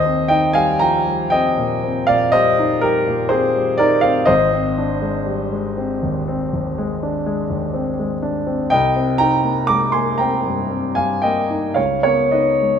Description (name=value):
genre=classical, impressionist solo piano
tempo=35-42 BPM (dotted quarters)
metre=9/8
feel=rubato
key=Eb major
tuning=A4 = 440 Hz
part: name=warm concert grand piano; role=solo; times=0.0-12.8 s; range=Ab1 to D6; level=-16 LUFS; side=equal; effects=none
room=moderate recital hall reverb, RT60 1.7 s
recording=minimal, uncompressed stereo recording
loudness=-16 LUFS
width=side -7 dB against mid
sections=0.0-12.8 A section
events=none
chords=0.0 Eb6; 4.3 Abmaj7#11; 8.7 Cm7; 11.8 Dbsus2